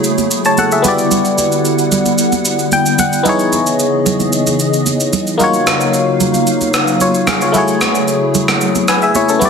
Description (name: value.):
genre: amapiano.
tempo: 112 BPM.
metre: 4/4.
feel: straight.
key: unclear.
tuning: A4 = 440 Hz.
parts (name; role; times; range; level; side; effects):
barking FM electric piano; accompaniment; 0.0-9.5 s; A3 to A5; -14 LUFS; left 2 dB; chorus.
hollow soft pad; sustained chords; 0.0-9.5 s; C#3 to F#5; -17 LUFS; equal; ensemble chorus.
electronic shaker and rim click; drums; 0.0-9.5 s; none; -18 LUFS; right 1 dB; none.
congas; percussion; 0.2-9.5 s; none; -21 LUFS; right 9 dB; none.
room: moderate plate reverb, RT60 1.6 s, digital ambience.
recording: heavily compressed radio sound.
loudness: -11 LUFS.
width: side -6 dB against mid.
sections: 0.0-9.5 A section.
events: FM electric piano fill 2.5-3.3.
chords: 0.0 F#m9; 0.8 Em9; 3.3 C#m9; 5.4 D#m9; 7.5 F#m9.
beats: 0.04 0.58 | 1.11 1.65 2.19 2.72 | 3.26 3.79 4.33 4.86 | 5.40 5.93 6.47 7.01 | 7.54 8.08 8.61 9.15.